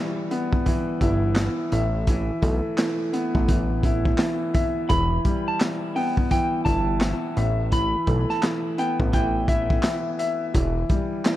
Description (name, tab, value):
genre	hip hop, boom-bap hip-hop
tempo	85 BPM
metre	4/4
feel	swing 62% on 16ths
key	unclear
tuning	A4 = 442 Hz
part	dark concert grand piano	accompaniment	0.0-11.4 s	E3 to E5	-25 LUFS	left 1 dB	cassette tape, high-pass filter, low-pass filter
part	crunchy breakbeat drum kit	drums	0.3-11.4 s	handclaps, hi-hat, kick drum, snare drum	-25 LUFS	equal	none
part	fat analog bass	bass	1.0-10.8 s	E1 to B1	-24 LUFS	equal	none
part	electric guitar at the edge of break-up	melody	4.9-10.5 s	E5 to B5	-28 LUFS	equal	wide subtle chorus, high-pass filter, low-pass filter, ping-pong delay
room	light reverb, studio ambience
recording	none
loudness	-21 LUFS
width	side -14 dB against mid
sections	0.0-11.4 A section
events	none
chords	0.0 Em; 1.7 Asus2; 4.9 Em; 7.4 Asus2; 10.5 Em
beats	0.66 1.37 | 2.07 2.78 3.49 4.19 | 4.90 5.60 6.31 7.01 | 7.72 8.43 9.13 9.84 | 10.54 11.25